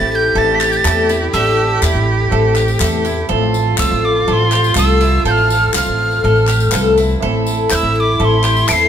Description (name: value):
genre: indie folk with a building arrangement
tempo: 122 BPM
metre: 4/4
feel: straight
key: A minor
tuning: A4 = 441 Hz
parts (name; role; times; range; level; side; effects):
- breathy mellow tin whistle; melody; 0.0-8.9 s; C6 to D7; -17 LUFS; right 1 dB; none
- rich cello; second line; 0.0-8.9 s; E4 to G4; -22 LUFS; right 3 dB; none
- picked twelve-string acoustic guitar; accompaniment; 0.0-8.9 s; A2 to A4; -19 LUFS; left 5 dB; none
- warm upright piano; accompaniment; 0.0-8.9 s; A1 to E5; -25 LUFS; right 5 dB; none
- bowl-back mandolin; arpeggios; 0.0-8.9 s; E4 to A4; -22 LUFS; right 5 dB; none
- upright bass; bass; 0.0-8.9 s; A1 to E2; -17 LUFS; equal; none
- group handclap; percussion; 0.6-8.8 s; none; -23 LUFS; left 6 dB; none
- tambourine; percussion; 0.6-8.9 s; none; -27 LUFS; left 4 dB; none
room: moderate stone room reverb, RT60 1.1 s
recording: band playing live in one room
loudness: -12 LUFS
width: side -9 dB against mid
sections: 0.0-8.9 A section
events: none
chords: 0.0 Am; 3.3 F/A; 7.2 Am